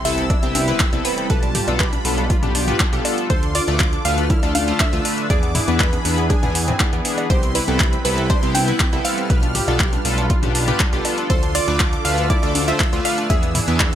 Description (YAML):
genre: progressive house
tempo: 120 BPM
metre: 4/4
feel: straight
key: C major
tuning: A4 = 439 Hz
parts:
  - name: wide unison pluck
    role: melody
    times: 0.0-13.9 s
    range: G#4 to G5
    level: -26 LUFS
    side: right 1 dB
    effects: digital delay
  - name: soft supersaw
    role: second line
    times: 0.0-13.9 s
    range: G#5 to G6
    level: -30 LUFS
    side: right 1 dB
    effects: sidechain pumping, digital delay
  - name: warm analog pad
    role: sustained chords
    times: 0.0-13.9 s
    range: C3 to B4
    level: -27 LUFS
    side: equal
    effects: chorus, tremolo, sidechain pumping
  - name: wide unison pluck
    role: arpeggios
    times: 0.0-13.9 s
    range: B3 to B4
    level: -28 LUFS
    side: right 1 dB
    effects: cassette tape, sidechain pumping, digital delay
  - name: sub drop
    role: sound effects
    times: 0.0-1.3 s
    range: none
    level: -39 LUFS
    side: equal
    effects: none
  - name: chorused polysynth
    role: stabs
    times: 0.1-13.8 s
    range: A3 to D5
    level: -25 LUFS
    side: left 2 dB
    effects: sidechain pumping, digital delay
  - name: fat analog bass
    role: bass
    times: 0.1-13.9 s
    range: B1 to E2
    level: -23 LUFS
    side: equal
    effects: sidechain pumping
  - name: deep house drum kit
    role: drums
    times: 0.1-13.9 s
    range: handclaps, hi-hat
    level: -23 LUFS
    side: equal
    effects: none
  - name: electronic kick drum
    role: drums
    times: 0.3-13.9 s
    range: none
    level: -19 LUFS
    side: equal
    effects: none
  - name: electronic bongos, congas and toms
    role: percussion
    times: 0.3-13.9 s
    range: none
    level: -29 LUFS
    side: left 2 dB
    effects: overdrive, sidechain pumping on perc, sidechain pumping on toms
room: little or no reverb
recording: none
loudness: -16 LUFS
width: side -10 dB against mid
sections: 0.0-13.9 A section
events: impact 0.0-1.3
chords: 0.0 Cmaj7; 1.3 G7/B; 3.3 Dm; 5.3 E7; 7.3 Cmaj7; 9.3 G7/B; 11.3 Dm; 13.3 E7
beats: 0.30 0.80 | 1.30 1.80 2.30 2.80 | 3.30 3.80 4.30 4.80 | 5.30 5.80 6.30 6.80 | 7.30 7.80 8.30 8.80 | 9.30 9.80 10.30 10.80 | 11.30 11.80 12.30 12.80 | 13.30 13.80